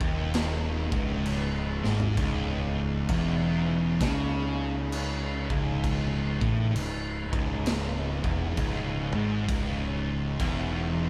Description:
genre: stoner and doom metal.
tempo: 66 BPM.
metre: 4/4.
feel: swing 63% on 8ths.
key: C# minor.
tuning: A4 = 444 Hz.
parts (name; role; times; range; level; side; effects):
metallic inharmonic drone; sustained chords; 0.0-11.1 s; C#3 to D#4; -42 LUFS; equal; chorus, built-in reverb.
crunchy overdriven guitar; riff; 0.0-11.1 s; C#2 to C#3; -36 LUFS; equal; none.
thick fuzz guitar; riff; 0.0-11.1 s; C#2 to C#3; -36 LUFS; equal; distortion.
thick fuzz guitar; riff; 0.0-11.1 s; C#2 to C#3; -35 LUFS; equal; distortion.
growling fingered electric bass; bass; 0.0-11.1 s; C#1 to C#2; -35 LUFS; equal; overdrive.
raw garage drum kit; drums; 0.0-10.7 s; crash cymbal, kick drum, snare drum, toms; -35 LUFS; equal; none.
room: light reverb.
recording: band playing live in one room.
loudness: -28 LUFS.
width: mono.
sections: 0.0-11.1 A section.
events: drum fill 1.7-2.2.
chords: 0.0 C#m.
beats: 0.34 1.26 | 2.18 3.09 4.01 4.92 | 5.84 6.75 7.66 8.57 | 9.49 10.40.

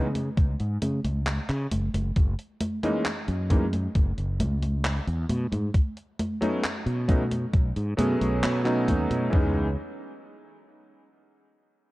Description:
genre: vaporwave.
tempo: 67 BPM.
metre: 4/4.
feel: straight.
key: C# minor.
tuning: A4 = 438 Hz.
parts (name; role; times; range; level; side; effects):
warm electric grand piano; accompaniment; 0.0-9.7 s; E3 to G#4; -28 LUFS; equal; lush chorus, tape echo.
fretless electric bass; bass; 0.0-9.7 s; F#1 to C#3; -27 LUFS; equal; none.
gated 80s digital drum machine; drums; 0.2-9.3 s; congas, handclaps, hi-hat; -31 LUFS; equal; gated reverb, small room ambience.
gated 80s digital drum machine; drums; 0.4-9.5 s; kick drum, toms; -22 LUFS; equal; gated reverb, small room ambience.
room: digital ambience.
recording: dark, warm production, cassette tape.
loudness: -24 LUFS.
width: side -19 dB against mid.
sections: 0.0-9.3 A section; 9.3-11.9 B section.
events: none.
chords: 0.0 N.C.; 1.7 F#7(no3); 5.3 B7; 9.3 C#m9.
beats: 0.37 1.27 | 2.16 3.06 3.95 4.85 | 5.75 6.64 7.54 8.43 | 9.33.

